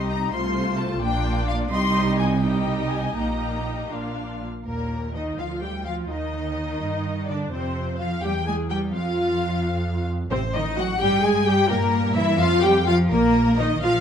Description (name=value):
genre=quick classical-period movement for string orchestra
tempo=85 BPM (dotted quarters)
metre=6/8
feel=rubato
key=Eb major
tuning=A4 = 440 Hz
part: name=warm symphonic violin section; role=melody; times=0.0-14.0 s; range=Bb4 to C6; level=-28 LUFS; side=left 5 dB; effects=none
part: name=rich studio violin section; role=second line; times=0.0-14.0 s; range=F4 to Ab5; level=-31 LUFS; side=left 3 dB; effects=none
part: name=warm symphonic viola section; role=accompaniment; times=0.0-13.9 s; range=G3 to Ab4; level=-26 LUFS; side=equal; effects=none
part: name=bright studio double bass section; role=bass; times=0.0-14.0 s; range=A1 to G2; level=-27 LUFS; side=right 2 dB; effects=none
part: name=rich symphonic cello section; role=bass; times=0.0-14.0 s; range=Bb2 to Ab3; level=-27 LUFS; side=right 2 dB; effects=none
room=moderate recital hall reverb, RT60 1.4 s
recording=dark, warm production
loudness=-20 LUFS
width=side -8 dB against mid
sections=0.0-4.7 A section; 4.7-14.0 B section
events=none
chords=0.3 F/C; 1.0 Bb; 1.7 Cm; 3.2 Eb/Bb; 3.9 Bb; 4.7 Eb5; 5.4 Dmadd11; 6.1 Eb; 7.5 F5; 8.2 Em; 8.9 N.C.; 10.3 Adim7; 11.0 N.C.; 11.7 Gm6; 12.4 Fsus2; 13.1 Eb5/Bb